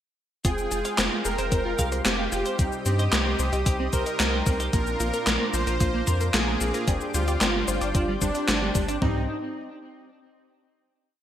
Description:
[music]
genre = synthwave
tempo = 112 BPM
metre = 4/4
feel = straight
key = C minor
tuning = A4 = 439 Hz
[part]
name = soft supersaw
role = melody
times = 0.4-9.2 s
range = D4 to C5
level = -30 LUFS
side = equal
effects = digital delay
[part]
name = analog string pad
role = sustained chords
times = 0.4-9.3 s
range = Ab3 to Eb6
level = -36 LUFS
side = left 2 dB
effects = ensemble chorus, sidechain pumping
[part]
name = wide unison pluck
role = arpeggios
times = 0.4-9.3 s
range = Bb3 to Eb5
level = -35 LUFS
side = left 1 dB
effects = cassette tape, digital delay
[part]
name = clean electric guitar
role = riff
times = 0.4-9.3 s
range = G3 to F5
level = -34 LUFS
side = right 1 dB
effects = analog chorus, digital delay
[part]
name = mellow synth brass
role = stabs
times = 0.4-9.2 s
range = G2 to G5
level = -34 LUFS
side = right 1 dB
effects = chorus
[part]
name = round analog bass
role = bass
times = 0.4-9.3 s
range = F1 to G2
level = -28 LUFS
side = equal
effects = none
[part]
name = gated 80s digital drum machine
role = drums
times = 0.4-9.1 s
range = kick drum, toms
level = -26 LUFS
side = equal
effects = gated reverb, overdrive
[part]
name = gated 80s digital drum machine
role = drums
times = 0.4-9.0 s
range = cabasa, handclaps, hi-hat, snare drum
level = -26 LUFS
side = equal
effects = gated reverb, gated reverb snare, overdrive
[sound]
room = moderate plate reverb, RT60 1.3 s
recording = bright 1980s-style digital production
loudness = -22 LUFS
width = side -10 dB against mid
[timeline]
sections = 0.4-9.0 chorus; 9.0-11.2 final chord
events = none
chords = 0.4 Fmadd9; 2.6 Cm; 4.7 Bbadd9; 6.9 Gsus4; 9.0 Cm

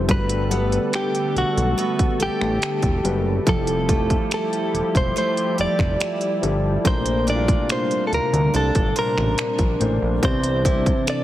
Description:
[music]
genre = contemporary R&B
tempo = 71 BPM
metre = 4/4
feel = straight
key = unclear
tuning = A4 = 440 Hz
[part]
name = direct-recorded clean electric guitar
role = melody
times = 0.0-11.2 s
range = F#4 to D5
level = -24 LUFS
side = equal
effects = tape echo
[part]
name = warm concert grand piano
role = accompaniment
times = 0.0-11.2 s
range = Bb2 to F#5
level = -28 LUFS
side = left 4 dB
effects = none
[part]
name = warm analog pad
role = sustained chords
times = 0.0-11.2 s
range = Bb2 to A4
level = -28 LUFS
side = left 1 dB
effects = chorus
[part]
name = picked steel-string acoustic guitar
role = arpeggios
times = 0.0-11.2 s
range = F3 to D5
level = -29 LUFS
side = right 5 dB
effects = none
[part]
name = fat analog bass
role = bass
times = 0.0-10.9 s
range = E1 to D2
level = -23 LUFS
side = equal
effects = none
[part]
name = trap drum kit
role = drums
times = 0.1-11.2 s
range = finger snaps, hi-hat, kick drum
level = -23 LUFS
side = equal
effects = none
[sound]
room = digital ambience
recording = heavily compressed radio sound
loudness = -18 LUFS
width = side -13 dB against mid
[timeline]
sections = 0.0-11.2 A section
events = none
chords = 0.1 Gmaj9; 3.5 Fmaj9; 6.8 Bbmaj9; 10.2 Cmaj9

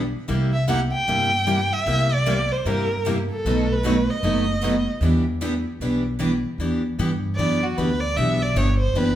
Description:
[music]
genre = acoustic string swing (jazz manouche)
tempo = 152 BPM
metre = 4/4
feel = swing 63% on 8ths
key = E minor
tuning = A4 = 439 Hz
[part]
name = upright bass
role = bass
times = 0.0-9.2 s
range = F#1 to G2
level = -24 LUFS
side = equal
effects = none
[part]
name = picked steel-string acoustic guitar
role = accompaniment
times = 0.3-9.2 s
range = B2 to G4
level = -24 LUFS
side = left 1 dB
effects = none
[part]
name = picked steel-string acoustic guitar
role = accompaniment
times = 0.3-6.3 s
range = B2 to B4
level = -30 LUFS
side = right 6 dB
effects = none
[part]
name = warm violin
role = melody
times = 0.5-4.9, 7.4-9.2 s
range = F#4 to G5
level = -24 LUFS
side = right 1 dB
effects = none
[sound]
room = wet large studio reverb, RT60 1.2 s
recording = band playing live in one room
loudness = -19 LUFS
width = side -12 dB against mid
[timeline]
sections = 0.0-6.6 A section; 6.6-9.2 B section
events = violin solo 6.6-9.2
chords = 0.3 C7; 3.4 B7; 5.0 Em7; 6.6 Em9

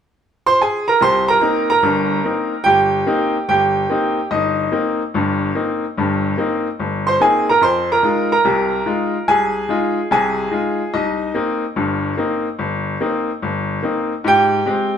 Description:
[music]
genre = solo jazz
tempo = 145 BPM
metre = 4/4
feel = swing 66% on 8ths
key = C minor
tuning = A4 = 440 Hz
[part]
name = bright upright piano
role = solo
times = 0.5-15.0 s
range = G1 to C6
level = -15 LUFS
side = equal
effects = none
[sound]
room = moderate large studio reverb, RT60 1.0 s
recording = band playing live in one room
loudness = -15 LUFS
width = side -8 dB against mid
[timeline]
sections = 0.0-1.0 A section; 1.0-15.0 B section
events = none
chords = 0.0 Abadd9; 1.0 Cm7; 7.6 Fm7; 10.9 Cm7; 14.2 Abmaj7

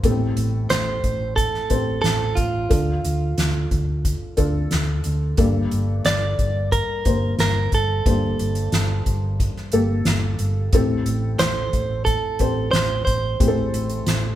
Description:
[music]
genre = piano-driven pop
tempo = 90 BPM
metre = 4/4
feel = straight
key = unclear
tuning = A4 = 440 Hz
[part]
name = felt-muted upright piano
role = accompaniment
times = 0.0-14.4 s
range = G2 to C5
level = -25 LUFS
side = left 2 dB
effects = none
[part]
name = hollow-body short-scale fingered electric bass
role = bass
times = 0.0-14.3 s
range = G1 to D2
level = -23 LUFS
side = equal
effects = none
[part]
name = soft-mallet drum kit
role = drums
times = 0.0-14.2 s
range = hi-hat, kick drum, snare drum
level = -23 LUFS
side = equal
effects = none
[part]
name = direct-recorded clean electric guitar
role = melody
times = 0.7-14.4 s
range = F4 to D5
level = -24 LUFS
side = right 3 dB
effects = none
[sound]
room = moderate stone room reverb, RT60 1.1 s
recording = band playing live in one room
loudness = -19 LUFS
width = side -12 dB against mid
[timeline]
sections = 0.0-14.4 A section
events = none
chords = 0.0 Am7; 2.7 Dm; 5.4 Gmadd9; 10.7 Am7

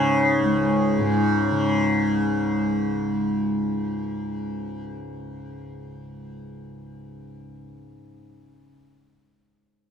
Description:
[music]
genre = indian classical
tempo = 165 BPM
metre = 4/4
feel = straight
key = unclear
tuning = A4 = 438 Hz
[part]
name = santur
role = melody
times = 0.0-2.7 s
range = Db4 to Ab4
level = -26 LUFS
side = equal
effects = none
[part]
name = tanpura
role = drone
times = 0.0-8.7 s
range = Db2 to Db3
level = -23 LUFS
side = equal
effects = none
[sound]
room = moderate booth ambience, RT60 0.2 s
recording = dry, close 1970s-style studio recording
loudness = -20 LUFS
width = side -7 dB against mid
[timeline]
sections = 0.0-1.7 A section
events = none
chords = none

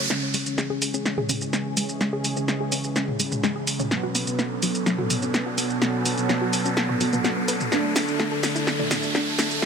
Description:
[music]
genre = melodic techno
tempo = 126 BPM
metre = 4/4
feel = straight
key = C# phrygian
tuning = A4 = 439 Hz
[part]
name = sweeping resonant pad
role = sustained chords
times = 0.0-9.7 s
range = E3 to A4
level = -31 LUFS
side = left 4 dB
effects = wide subtle chorus
[part]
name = wide unison pluck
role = arpeggios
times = 0.0-9.7 s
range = F#3 to B4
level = -30 LUFS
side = left 1 dB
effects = ping-pong delay
[part]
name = analog synth brass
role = stabs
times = 0.0-9.7 s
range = B2 to D4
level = -27 LUFS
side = right 3 dB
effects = chorus, ping-pong delay
[part]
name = riser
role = sound effects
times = 0.0-9.7 s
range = none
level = -31 LUFS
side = right 2 dB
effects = none
[part]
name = punchy analog drum machine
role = drums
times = 0.1-9.7 s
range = hi-hat, shaker, snare drum, toms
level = -26 LUFS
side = equal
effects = low-pass filter on snare, low-pass filter on perc, low-pass filter on hats, low-pass filter on toms
[sound]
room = moderate huge ambient reverb, RT60 5.2 s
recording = high-pass filter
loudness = -22 LUFS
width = side -6 dB against mid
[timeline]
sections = 0.1-9.7 A section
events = build-up 0.1-9.7; drum fill 0.1-9.7; riser 0.1-9.7; filter sweep on synth arpeggio sound 0.1-9.7; filter sweep on analog polysynth 0.1-9.7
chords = 0.1 C#m; 3.9 Bm7; 7.7 D

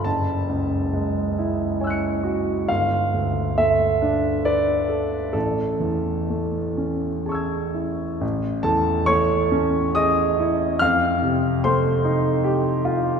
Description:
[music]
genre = classical, impressionist solo piano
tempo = 61-74 BPM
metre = 3/4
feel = rubato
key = unclear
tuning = A4 = 439 Hz
[part]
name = clear concert grand piano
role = solo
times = 0.0-13.2 s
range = F#1 to C#7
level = -19 LUFS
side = equal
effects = none
[sound]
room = wet church reverb, RT60 3.0 s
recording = recorded in a church or concert hall, nothing above 10.6 kHz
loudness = -19 LUFS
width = side -6 dB against mid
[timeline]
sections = 0.0-8.2 A section; 8.2-13.2 A section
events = none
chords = 0.0 F#m9; 2.7 G9; 5.4 Amaj7; 10.8 F9

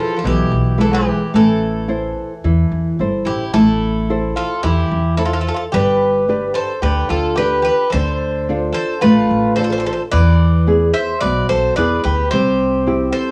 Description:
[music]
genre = greek folk, Greek bouzouki band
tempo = 109 BPM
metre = 4/4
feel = straight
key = A minor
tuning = A4 = 440 Hz
[part]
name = Greek bouzouki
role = melody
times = 0.0-13.3 s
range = G4 to E5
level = -22 LUFS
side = equal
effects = cassette tape, plate reverb
[part]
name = Greek bouzouki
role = second line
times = 0.0-13.3 s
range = E3 to C5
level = -26 LUFS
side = equal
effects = cassette tape, plate reverb
[part]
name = nylon-string guitar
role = accompaniment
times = 0.0-13.3 s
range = B2 to C5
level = -20 LUFS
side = equal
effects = cassette tape, plate reverb
[part]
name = upright bass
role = bass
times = 0.2-13.1 s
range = G1 to E2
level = -22 LUFS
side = equal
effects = none
[sound]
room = wet booth ambience, RT60 0.3 s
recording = home recording on cassette, small room ambience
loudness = -16 LUFS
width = mono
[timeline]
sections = 0.0-3.5 A section; 3.5-13.3 A section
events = none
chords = 0.0 E; 1.3 Am; 5.7 G; 7.9 Dm; 10.1 E; 12.3 C

